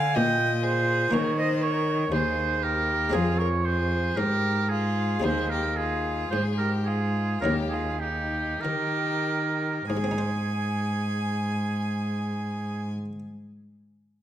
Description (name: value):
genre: classical, baroque-style sonata movement with continuo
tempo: 47-62 BPM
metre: 4/4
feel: rubato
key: Ab major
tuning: A4 = 440 Hz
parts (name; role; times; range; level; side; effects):
- rich violin; melody; 0.0-12.9 s; Eb4 to Ab5; -33 LUFS; left 6 dB; none
- warm oboe; second line; 0.0-12.9 s; G4 to Ab5; -28 LUFS; right 4 dB; none
- buff-stop harpsichord; accompaniment; 0.0-13.2 s; Eb2 to C5; -30 LUFS; left 2 dB; none
- clear cello; bass; 0.0-12.9 s; Eb2 to Eb3; -28 LUFS; equal; none
room: moderate recital hall reverb, RT60 1.4 s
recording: none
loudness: -24 LUFS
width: side -11 dB against mid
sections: 0.0-9.9 A section; 9.9-14.2 B section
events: slowing down 0.0-9.9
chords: 0.0 Bb7; 1.1 Eb5; 3.1 Fm; 5.2 Ab/Eb; 7.4 Eb7; 9.9 Ab